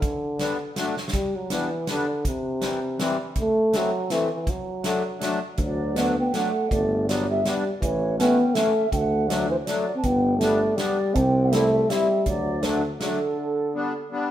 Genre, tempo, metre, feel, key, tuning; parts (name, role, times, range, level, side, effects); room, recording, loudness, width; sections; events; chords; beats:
alpine folk, alpine dance band; 162 BPM; 3/4; swing 55% on 8ths; G major; A4 = 439 Hz
mellow euphonium; melody; 0.0-14.1 s; C3 to C4; -24 LUFS; equal
natural country drum kit; drums; 0.0-13.1 s; hi-hat, kick drum, snare drum; -30 LUFS; equal
accordion; accompaniment; 0.4-14.3 s; D3 to E4; -29 LUFS; left 3 dB; light tremolo tuning
mellow bansuri; second line; 5.6-14.1 s; A4 to A5; -28 LUFS; right 1 dB
mellow tuba; bass; 5.6-13.0 s; G1 to D2; -27 LUFS; equal
wet stone room reverb, RT60 1.3 s; band playing live in one room; -21 LUFS; side -12 dB against mid
0.0-14.3 A section
drum fill 0.9
0.0 G/D; 0.8 D; 1.1 G; 2.2 C; 3.4 Am; 4.5 D; 6.7 Gadd9; 7.8 A; 8.9 D; 10.0 G; 11.2 C; 12.3 D; 13.4 G
| 0.01 0.39 0.76 | 1.13 1.50 1.87 | 2.24 2.61 2.98 | 3.35 3.72 4.09 | 4.47 4.84 5.21 | 5.59 5.96 6.33 | 6.70 7.07 7.44 | 7.81 8.18 8.55 | 8.92 9.29 9.66 | 10.04 10.41 10.78 | 11.15 11.53 11.89 | 12.26 12.63 13.00 | 13.37 13.74 14.12